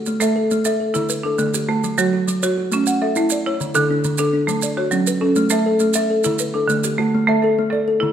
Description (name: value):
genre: southern african traditional, mbira-style interlocking cycle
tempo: 136 BPM (dotted quarters)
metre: 12/8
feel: straight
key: A mixolydian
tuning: A4 = 440 Hz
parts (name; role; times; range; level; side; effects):
- kalimba; arpeggios; 0.0-8.1 s; D3 to F#5; -19 LUFS; left 3 dB; none
- maracas; percussion; 0.1-7.0 s; none; -27 LUFS; right 8 dB; none
- buzzing marimba with hard mallets; arpeggios; 0.2-8.1 s; D3 to A4; -20 LUFS; right 5 dB; none
room: moderate recital hall reverb, RT60 1.6 s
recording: close, detailed microphones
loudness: -16 LUFS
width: side -9 dB against mid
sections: 0.0-7.1 A section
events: none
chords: 0.1 A5; 0.9 D; 1.8 F#m; 2.7 A; 3.6 D5; 4.5 F#m; 5.4 A; 6.2 D; 7.1 A5